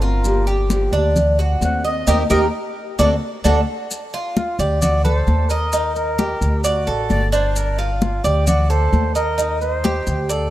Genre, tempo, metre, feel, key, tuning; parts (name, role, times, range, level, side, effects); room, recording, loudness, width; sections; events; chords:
latin, Cuban son and guajira; 131 BPM; 4/4; straight; A4 = 440 Hz
trumpet with bucket mute; melody; 0.0-10.5 s; F4 to F#5; -25 LUFS; equal
nylon-string guitar; accompaniment; 0.0-3.6 s; D3 to G4; -26 LUFS; left 2 dB
Cuban tres; arpeggios; 0.0-10.5 s; D4 to Eb5; -21 LUFS; right 2 dB
upright bass; bass; 0.0-10.5 s; G1 to Eb2; -19 LUFS; equal
maracas; percussion; 0.0-10.5 s; -30 LUFS; left 1 dB
congas; percussion; 0.2-10.5 s; -23 LUFS; left 2 dB
breathy bright jazz flute; second line; 7.1-7.9 s; Bb4 to D5; -28 LUFS; left 2 dB
light reverb, small room reverb; rough home demo mix; -16 LUFS; side -14 dB against mid
0.0-3.9 A section; 3.9-10.5 B section
muted trumpet solo 0.0-3.9; band accent 2.1-3.9
0.3 Gm7; 1.2 D7; 2.1 Eb6; 3.0 D7; 3.9 Dmadd11; 4.8 D7; 5.7 Eb; 6.6 D; 7.6 G5; 8.5 D7; 9.4 Eb6